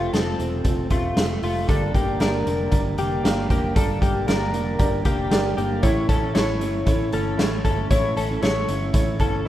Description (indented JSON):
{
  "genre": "jangly indie pop",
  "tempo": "116 BPM",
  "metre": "4/4",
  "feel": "straight",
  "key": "unclear",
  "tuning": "A4 = 439 Hz",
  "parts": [
    { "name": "electric guitar through a small old amp", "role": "accompaniment", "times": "0.0-9.5 s", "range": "G2 to E4", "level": "-28 LUFS", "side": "right 4 dB", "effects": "none" },
    { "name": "direct-recorded clean electric guitar", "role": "arpeggios", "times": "0.0-9.5 s", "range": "A3 to C#5", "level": "-25 LUFS", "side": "left 3 dB", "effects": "analog chorus, tape echo" },
    { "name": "vintage muted fingered electric bass", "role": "bass", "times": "0.0-9.5 s", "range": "E1 to A1", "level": "-27 LUFS", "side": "equal", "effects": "none" },
    { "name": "raw garage drum kit", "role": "drums", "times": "0.1-9.3 s", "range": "hi-hat, kick drum, snare drum", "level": "-23 LUFS", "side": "equal", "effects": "none" },
    { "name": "bright upright piano", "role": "accompaniment", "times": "1.7-9.5 s", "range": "E4 to A5", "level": "-30 LUFS", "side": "right 4 dB", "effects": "none" }
  ],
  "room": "moderate plate reverb, RT60 2.1 s",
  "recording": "rough home demo mix",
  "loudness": "-19 LUFS",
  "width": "side -13 dB against mid",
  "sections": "0.0-9.5 A section",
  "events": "upright piano fill 8.9-9.5",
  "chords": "0.0 F; 1.7 Gm; 5.8 A"
}